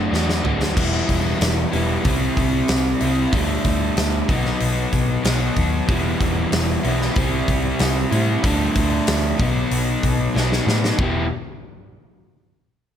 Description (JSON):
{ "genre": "classic rock", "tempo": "94 BPM", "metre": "4/4", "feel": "straight", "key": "E minor", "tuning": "A4 = 440 Hz", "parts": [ { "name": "crunchy overdriven guitar", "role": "riff", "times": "0.0-11.2 s", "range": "B2 to G4", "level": "-21 LUFS", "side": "equal", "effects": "none" }, { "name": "hollow-body short-scale picked electric bass", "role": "bass", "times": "0.0-11.3 s", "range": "E1 to A2", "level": "-23 LUFS", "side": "equal", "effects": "none" }, { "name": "huge arena drum kit", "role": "drums", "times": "0.1-11.1 s", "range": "crash cymbal, hi-hat, kick drum, snare drum, toms", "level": "-23 LUFS", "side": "equal", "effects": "none" } ], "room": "light reverb", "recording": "none", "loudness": "-17 LUFS", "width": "side -9 dB against mid", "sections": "0.8-11.0 A section; 11.0-13.0 B section", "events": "drum fill 0.0-0.8, 10.4-11.0", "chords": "0.0 D; 0.8 Em; 2.0 C; 3.3 Dsus4; 4.3 B; 5.9 Em; 7.2 C; 8.4 Dsus4; 9.4 B; 11.0 Em", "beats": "0.12 | 0.76 1.41 2.05 2.69 | 3.33 3.97 4.61 5.25 | 5.89 6.53 7.17 7.80 | 8.44 9.08 9.71 10.35 | 10.99" }